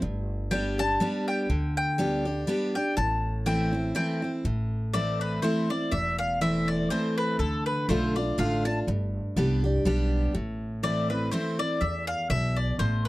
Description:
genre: bluegrass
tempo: 122 BPM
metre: 3/4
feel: swing 55% on 8ths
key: A minor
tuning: A4 = 440 Hz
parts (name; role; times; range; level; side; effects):
- picked steel-string acoustic guitar; accompaniment; 0.0-13.1 s; E2 to G4; -28 LUFS; equal; none
- upright bass; bass; 0.0-13.1 s; E1 to E2; -30 LUFS; equal; none
- mandolin; melody; 0.5-13.1 s; A4 to A5; -30 LUFS; left 2 dB; none
room: little or no reverb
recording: dry, close 1970s-style studio recording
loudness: -25 LUFS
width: side -18 dB against mid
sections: 0.0-4.4 A section; 4.4-13.1 B section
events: none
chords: 0.0 G; 3.0 Am; 7.4 Dm; 8.9 G; 10.3 Am

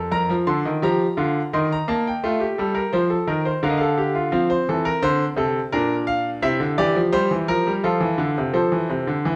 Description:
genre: classical, baroque-style 3-part fugue for grand piano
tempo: 85 BPM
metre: 3/4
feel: straight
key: Bb major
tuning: A4 = 440 Hz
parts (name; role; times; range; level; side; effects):
- bright concert grand piano; solo; 0.0-9.4 s; F2 to C6; -21 LUFS; equal; none
room: moderate recital hall reverb, RT60 1.5 s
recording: close, detailed microphones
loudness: -21 LUFS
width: mono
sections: 0.1-8.5 A section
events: none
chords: 0.1 Bb/F; 1.5 Eb; 2.2 F7; 3.6 Bb/D; 4.3 F; 5.7 Bb; 6.4 C7; 7.8 F

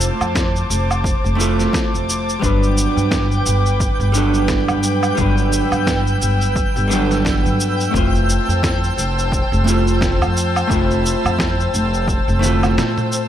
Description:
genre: sunset chillout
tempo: 87 BPM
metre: 4/4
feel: swing 57% on 16ths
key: unclear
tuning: A4 = 443 Hz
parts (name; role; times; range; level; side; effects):
- vintage hollow-body jazz guitar; accompaniment; 0.0-13.3 s; F#3 to C5; -21 LUFS; moving between left 3 dB and right 4 dB; auto-pan, digital delay
- airy breathy pad; sustained chords; 0.0-13.3 s; B4 to E6; -23 LUFS; equal; chorus
- upright bass; bass; 0.0-12.8 s; F1 to G2; -19 LUFS; equal; none
- dusty soul sampler-style drum kit; drums; 0.0-13.3 s; cabasa, snare drum, toms, woodblock; -23 LUFS; equal; overdrive
- electronic kick drum; drums; 0.4-12.2 s; none; -22 LUFS; equal; overdrive
- twinkling granular texture; texture; 2.7-13.3 s; G5; -28 LUFS; left 2 dB; built-in reverb
room: light reverb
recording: none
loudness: -15 LUFS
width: side -10 dB against mid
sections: 0.0-13.3 A section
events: drum fill 12.4-13.3; break 12.8-13.3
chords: 0.0 Fmaj7; 2.4 Gmaj7; 7.9 Fmaj7

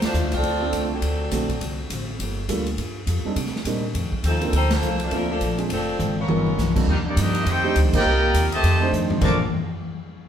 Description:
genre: jazz, big band swing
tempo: 205 BPM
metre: 4/4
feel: swing 60% on 8ths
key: Bb major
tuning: A4 = 440 Hz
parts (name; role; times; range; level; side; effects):
- warm saxophone section; melody; 0.0-1.8, 4.3-6.8 s; F3 to G5; -26 LUFS; left 1 dB; none
- picked steel-string acoustic guitar; accompaniment; 0.0-9.4 s; F2 to A4; -32 LUFS; left 3 dB; none
- upright bass; bass; 0.0-9.4 s; F1 to C3; -24 LUFS; equal; none
- swinging big-band drum kit; drums; 0.0-9.3 s; crash cymbal, hi-hat, kick drum, ride cymbal, snare drum, toms; -27 LUFS; left 1 dB; none
- warm concert grand piano; accompaniment; 0.6-9.4 s; C3 to C5; -28 LUFS; right 4 dB; none
- bright trombone section; second line; 6.2-9.4 s; Bb2 to G4; -27 LUFS; right 1 dB; none
- brilliant trumpet section; melody; 6.9-9.4 s; G3 to D6; -24 LUFS; equal; none
room: moderate large studio reverb, RT60 1.2 s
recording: band playing live in one room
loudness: -20 LUFS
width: side -9 dB against mid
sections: 0.0-6.9 A section; 6.9-9.2 B section; 9.2-10.3 C section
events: band accent 4.7, 7.9; drum fill 6.0-6.6, 8.9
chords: 0.0 Dm7; 1.0 D7; 2.2 Gm9; 3.4 Cm7; 3.9 F7; 4.5 Bbmaj7; 5.7 Dm7b5; 6.3 G7alt; 6.9 Cm11; 7.5 F13; 8.0 Cm11; 8.6 F13; 9.2 Bbmaj7

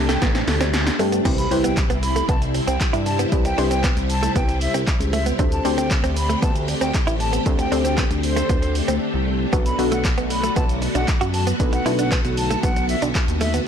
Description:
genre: dance-pop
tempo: 116 BPM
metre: 4/4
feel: straight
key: unclear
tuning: A4 = 441 Hz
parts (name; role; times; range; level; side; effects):
- glassy wavetable pluck; melody; 0.0-0.6 s; G5; -31 LUFS; right 2 dB; chorus, tape echo
- soft round pluck; accompaniment; 0.0-12.7 s; A3 to D5; -25 LUFS; left 2 dB; chorus, sidechain pumping
- string machine, violins; sustained chords; 0.0-13.7 s; C3 to G4; -26 LUFS; left 1 dB; ensemble chorus, sidechain pumping
- mallet-like synth pluck; arpeggios; 0.0-1.1 s; A3 to D5; -32 LUFS; left 1 dB; none
- chorused synth bass; bass; 0.0-13.6 s; A1 to G2; -24 LUFS; equal; sidechain pumping
- direct-recorded clean electric guitar; riff; 0.1-13.6 s; A3 to F#4; -26 LUFS; right 4 dB; analog chorus
- punchy analog drum machine; drums; 0.1-13.7 s; crash cymbal, handclaps, hi-hat, kick drum, shaker, snare drum; -22 LUFS; equal; none
- impact; sound effects; 1.3-3.3 s; none; -34 LUFS; equal; none
- bright silver concert flute; melody; 1.4-13.5 s; C5 to B5; -28 LUFS; left 1 dB; tape echo
room: light reverb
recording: blown-out, overdriven recording, overdrive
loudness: -18 LUFS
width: side -8 dB against mid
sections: 0.0-1.3 A section; 1.3-13.7 B section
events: build-up 0.0-1.3; drum fill 0.0-1.3; drop 1.3-13.7; impact 1.3-3.3; silent gap 9.0-9.5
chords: 0.0 D7sus4; 1.3 Cmaj7; 5.4 D7sus4; 9.5 Bm7

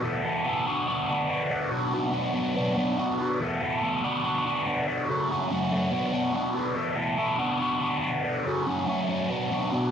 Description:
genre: rock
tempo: 142 BPM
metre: 4/4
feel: straight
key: B minor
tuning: A4 = 442 Hz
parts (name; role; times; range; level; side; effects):
- crunchy overdriven guitar; solo; 0.0-9.9 s; E2 to A4; -25 LUFS; equal; phaser, cassette tape
room: moderate booth ambience, RT60 0.2 s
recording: home recording on cassette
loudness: -25 LUFS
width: side -8 dB against mid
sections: 0.0-2.6 A section; 2.6-9.9 B section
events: none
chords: 0.0 Esus4; 0.7 Bm/D; 1.7 Bm; 3.4 Esus4; 4.0 Bm/D; 5.1 F#m; 5.9 Bm; 6.8 Esus4; 7.4 Bm/D; 8.5 F#m; 9.3 Bm

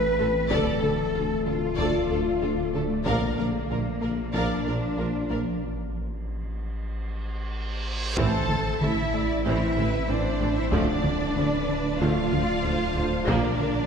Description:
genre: cinematic, hybrid orchestral and electronic film score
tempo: 94 BPM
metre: 4/4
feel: straight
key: A minor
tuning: A4 = 440 Hz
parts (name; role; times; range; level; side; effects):
- ethereal airy pad; sustained chords; 0.0-13.9 s; D3 to E5; -34 LUFS; left 1 dB; ensemble chorus, built-in reverb
- mellow French horn section; sustained chords; 0.0-13.5 s; A3 to B4; -30 LUFS; left 4 dB; none
- plucky analog bass; riff; 0.0-13.8 s; D2 to Bb3; -32 LUFS; left 2 dB; none
- saturated sub bass; bass; 0.0-13.9 s; D1 to Bb1; -33 LUFS; equal; none
- warm symphonic cello section; bass; 0.0-13.9 s; A3 to B4; -30 LUFS; right 2 dB; none
- warm symphonic violin section; melody; 0.2-13.9 s; F4 to A5; -36 LUFS; left 3 dB; none
- warm symphonic violin section; second line; 0.2-13.9 s; F4 to E5; -35 LUFS; left 2 dB; none
- warm symphonic viola section; accompaniment; 0.2-13.6 s; E3 to Bb4; -33 LUFS; right 1 dB; none
- warm symphonic double bass section; bass; 0.2-13.4 s; A1 to D2; -34 LUFS; right 3 dB; none
- warm tuba; bass; 0.2-13.4 s; A1 to D2; -33 LUFS; right 3 dB; none
- taiko ensemble; drums; 0.5-13.9 s; none; -32 LUFS; equal; none
- reverse cymbal and impact; sound effects; 6.9-10.7 s; none; -36 LUFS; right 2 dB; none
- clear trombone section; sustained chords; 8.2-13.5 s; D3 to Bb3; -40 LUFS; right 3 dB; none
room: wet concert hall reverb, RT60 2.6 s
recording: recorded in a church or concert hall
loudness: -23 LUFS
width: side -6 dB against mid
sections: 0.0-8.2 A section; 8.2-13.9 B section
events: break 5.6-8.2; reverse cymbal 6.9-8.2; drum fill 7.2-8.2; impact 8.2-10.7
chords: 0.0 Am; 0.5 Dm; 3.1 Bb; 5.6 N.C.; 8.2 Am; 10.7 Dm; 13.3 Bb

